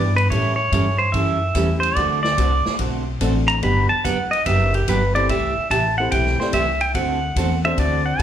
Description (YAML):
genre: country, western swing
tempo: 145 BPM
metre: 4/4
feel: swing 68% on 8ths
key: unclear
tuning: A4 = 440 Hz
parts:
  - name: pedal steel guitar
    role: melody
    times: 0.0-8.2 s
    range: G4 to B5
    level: -20 LUFS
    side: right 1 dB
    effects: slapback echo
  - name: dark upright piano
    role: accompaniment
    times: 0.0-8.2 s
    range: G3 to D5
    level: -26 LUFS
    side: left 3 dB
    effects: slapback echo
  - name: upright bass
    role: bass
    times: 0.0-8.2 s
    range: F1 to A2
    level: -22 LUFS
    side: left 1 dB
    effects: none
  - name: swinging big-band drum kit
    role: drums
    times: 0.2-8.2 s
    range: hi-hat, kick drum, ride cymbal, snare drum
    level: -30 LUFS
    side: left 2 dB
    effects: none
  - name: picked steel-string acoustic guitar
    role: accompaniment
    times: 0.3-8.2 s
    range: C3 to A4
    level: -25 LUFS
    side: right 4 dB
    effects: slapback echo
room: small room ambience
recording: live gig heard through the venue's PA, club reverb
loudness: -17 LUFS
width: side -10 dB against mid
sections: 0.0-8.2 A section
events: pedal steel guitar solo 0.0-8.2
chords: 0.3 A7; 2.0 D7; 3.6 Gmaj7; 5.3 C6; 6.9 D7